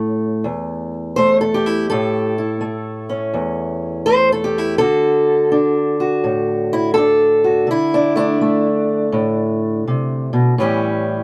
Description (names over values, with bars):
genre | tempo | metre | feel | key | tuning
acoustic country blues, solo or duo | 83 BPM | 4/4 | swing 64% on 8ths | A mixolydian | A4 = 441 Hz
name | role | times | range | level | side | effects
fingerpicked steel-string acoustic guitar | solo | 0.0-11.2 s | E2 to C5 | -18 LUFS | equal | none
room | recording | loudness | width
moderate small room reverb, RT60 0.5 s | close, detailed microphones | -17 LUFS | mono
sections
0.0-11.2 A section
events
none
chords
0.0 A7; 4.8 D; 10.6 A7